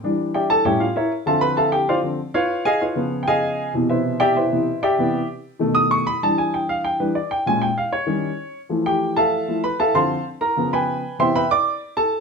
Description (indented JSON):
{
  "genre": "jazz",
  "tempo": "193 BPM",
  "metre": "4/4",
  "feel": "straight",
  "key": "C major",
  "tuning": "A4 = 440 Hz",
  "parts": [
    { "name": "warm baby grand piano", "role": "solo", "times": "0.0-12.2 s", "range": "A2 to D#6", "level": "-18 LUFS", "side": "equal", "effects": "none" }
  ],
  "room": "moderate studio reverb, RT60 0.7 s",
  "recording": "dark, warm production",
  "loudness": "-18 LUFS",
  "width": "side -5 dB against mid",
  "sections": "0.0-6.2 A section; 6.2-12.2 A section",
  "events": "grand piano solo 0.0-12.2",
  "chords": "0.0 Em7; 0.6 A7b9; 1.3 Dm9; 2.5 Db9; 3.7 Cmaj9; 5.6 B7; 6.2 Em7; 7.5 Bbm7; 8.1 Eb7; 8.7 Fmaj7; 9.9 Dm7; 10.6 Db7#11; 11.2 Cmaj7"
}